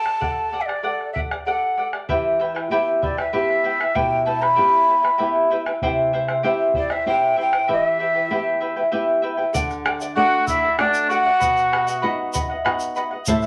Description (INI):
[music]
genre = andean folk, Andean ensemble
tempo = 96 BPM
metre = 3/4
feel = straight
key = E minor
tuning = A4 = 440 Hz
[part]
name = mellow quena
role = melody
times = 0.0-12.3 s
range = D5 to B5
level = -22 LUFS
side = equal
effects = none
[part]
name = charango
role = accompaniment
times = 0.0-13.5 s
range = E4 to A5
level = -24 LUFS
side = equal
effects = none
[part]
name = bombo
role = percussion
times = 0.1-13.5 s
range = none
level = -31 LUFS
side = equal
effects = none
[part]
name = flamenco guitar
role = accompaniment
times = 2.1-13.5 s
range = A2 to G4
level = -32 LUFS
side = equal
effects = none
[part]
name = egg shaker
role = percussion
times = 9.5-13.5 s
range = none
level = -35 LUFS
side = equal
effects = none
[part]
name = mellow cor anglais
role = second line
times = 10.2-12.3 s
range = D4 to F#4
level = -24 LUFS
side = equal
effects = none
[sound]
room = wet club reverb, RT60 0.7 s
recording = none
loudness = -20 LUFS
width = mono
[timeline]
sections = 0.0-9.6 A section; 9.6-13.5 B section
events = none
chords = 0.0 D; 2.1 Em; 5.8 C; 7.7 Em; 9.6 D; 11.4 B